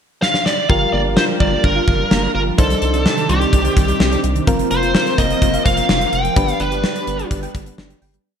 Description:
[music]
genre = synth-pop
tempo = 127 BPM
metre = 4/4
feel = straight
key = unclear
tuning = A4 = 440 Hz
[part]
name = smooth overdriven lead guitar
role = melody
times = 0.2-7.3 s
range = G4 to G5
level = -19 LUFS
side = right 1 dB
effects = digital delay
[part]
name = gated 80s drum kit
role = drums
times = 0.2-8.2 s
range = hi-hat, kick drum, snare drum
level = -18 LUFS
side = equal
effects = gated reverb
[part]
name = soft electric-piano-like synth keys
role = accompaniment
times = 0.7-8.2 s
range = C4 to C5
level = -24 LUFS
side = left 2 dB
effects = chorus
[part]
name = soft string machine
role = sustained chords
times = 0.7-8.2 s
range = C3 to D5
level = -24 LUFS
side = equal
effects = ensemble chorus
[part]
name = soft round pluck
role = arpeggios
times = 0.7-8.2 s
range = Eb3 to G5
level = -26 LUFS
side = right 3 dB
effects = chorus, digital delay
[part]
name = rubbery square bass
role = bass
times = 0.7-8.2 s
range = F1 to C2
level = -22 LUFS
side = equal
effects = none
[sound]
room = moderate lush hall reverb, RT60 1.6 s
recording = bright 1980s-style digital production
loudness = -14 LUFS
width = side -8 dB against mid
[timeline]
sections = 0.0-0.7 pickup bar; 0.7-8.3 pre-chorus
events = drum fill 0.2-0.7; fade-out 6.4-8.3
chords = 0.0 N.C.; 0.7 Gm7; 2.6 Cmadd9; 4.5 Fsus4; 6.4 G

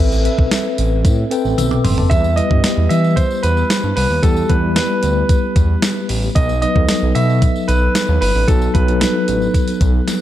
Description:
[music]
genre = 1980s-style pop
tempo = 113 BPM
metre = 4/4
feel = straight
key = E harmonic minor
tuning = A4 = 440 Hz
[part]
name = mellow tine electric piano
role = accompaniment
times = 0.0-10.2 s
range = F#3 to E6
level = -20 LUFS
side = left 2 dB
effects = medium stereo tremolo
[part]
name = smooth synth bass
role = bass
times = 0.0-10.0 s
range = F#1 to E3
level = -17 LUFS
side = equal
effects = none
[part]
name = tambourine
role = percussion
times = 0.1-10.2 s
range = none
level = -35 LUFS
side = left 4 dB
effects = none
[part]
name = clean 12-bit digital drum machine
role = drums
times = 0.3-10.2 s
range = hi-hat, kick drum, snare drum, toms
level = -17 LUFS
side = equal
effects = none
[part]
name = clear concert grand piano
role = melody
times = 2.1-10.2 s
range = A4 to E5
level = -20 LUFS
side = right 1 dB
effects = tape echo
[sound]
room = light reverb, digital ambience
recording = dark, warm production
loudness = -13 LUFS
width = side -12 dB against mid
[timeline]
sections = 0.0-2.1 A section; 2.1-10.2 B section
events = drum fill 1.6-2.1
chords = 0.0 Amadd9; 2.1 Em; 6.4 B

